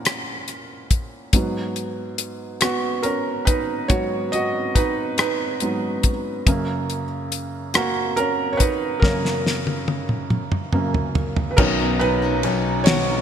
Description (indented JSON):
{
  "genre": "six-eight pop ballad",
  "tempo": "47 BPM (dotted quarters)",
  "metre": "6/8",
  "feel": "straight",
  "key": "unclear",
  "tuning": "A4 = 440 Hz",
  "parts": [
    { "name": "felt-muted upright piano", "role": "accompaniment", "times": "0.0-13.2 s", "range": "F#2 to F#5", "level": "-23 LUFS", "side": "right 2 dB", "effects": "none" },
    { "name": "damped 70s drum kit", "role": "drums", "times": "0.1-13.1 s", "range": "crash cymbal, hi-hat, kick drum, ride cymbal, rim click, snare drum, toms", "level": "-21 LUFS", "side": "left 1 dB", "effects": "gated reverb" },
    { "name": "picked steel-string acoustic guitar", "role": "arpeggios", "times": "11.6-13.2 s", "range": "B2 to A#4", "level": "-25 LUFS", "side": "left 3 dB", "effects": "ensemble chorus" },
    { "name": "warm concert grand piano", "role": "bass", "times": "11.6-13.2 s", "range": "B1", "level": "-23 LUFS", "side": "left 3 dB", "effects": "none" }
  ],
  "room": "light reverb, studio reverb",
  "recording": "bright 1980s-style digital production",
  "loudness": "-19 LUFS",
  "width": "side -8 dB against mid",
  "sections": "0.0-11.6 A section; 11.6-13.2 B section",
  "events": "felt piano solo 0.0-11.6, 11.6-13.2; drum fill 9.0-11.6",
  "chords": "0.0 F#/A#; 1.3 G#m7; 6.5 F#; 11.6 Bmaj7",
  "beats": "0.05 | 1.33 2.61 | 3.89 5.17 | 6.46 7.74 | 9.02 10.30 | 11.58 12.86"
}